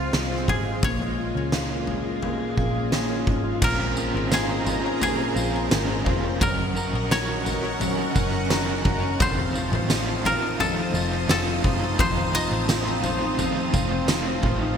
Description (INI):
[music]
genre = dream pop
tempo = 86 BPM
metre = 4/4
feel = straight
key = unclear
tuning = A4 = 440 Hz
[part]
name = koto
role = melody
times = 0.0-13.9 s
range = F4 to Eb5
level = -28 LUFS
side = left 1 dB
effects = ping-pong delay
[part]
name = string machine, violins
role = sustained chords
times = 0.0-14.7 s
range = F3 to Eb6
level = -31 LUFS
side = right 1 dB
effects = ensemble chorus
[part]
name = mellow electric guitar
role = arpeggios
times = 0.0-14.8 s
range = F2 to Bb4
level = -29 LUFS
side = left 4 dB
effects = lush chorus, ping-pong delay
[part]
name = vintage muted picked electric bass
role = bass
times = 0.0-14.8 s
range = F1 to Db2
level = -30 LUFS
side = right 1 dB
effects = none
[part]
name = oversized low-tuned drum kit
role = drums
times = 0.1-14.6 s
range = crash cymbal, kick drum, snare drum, tambourine, toms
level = -26 LUFS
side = equal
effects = gated reverb
[part]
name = drifting glass-harmonics texture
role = texture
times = 0.8-14.6 s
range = C4 to Eb5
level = -35 LUFS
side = right 1 dB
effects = chorus, built-in reverb, ping-pong delay
[part]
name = overdriven semi-hollow guitar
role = accompaniment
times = 3.6-14.8 s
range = F2 to Bb4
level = -30 LUFS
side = right 4 dB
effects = tremolo, lush chorus
[sound]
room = moderate lush hall reverb, RT60 2.5 s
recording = bright 1980s-style digital production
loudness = -21 LUFS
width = side -7 dB against mid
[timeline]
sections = 0.0-3.6 A section; 3.6-14.8 B section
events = none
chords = 0.0 Dbmaj7; 0.8 Bbm7; 3.6 Bbm9; 6.4 Gb6; 9.2 F7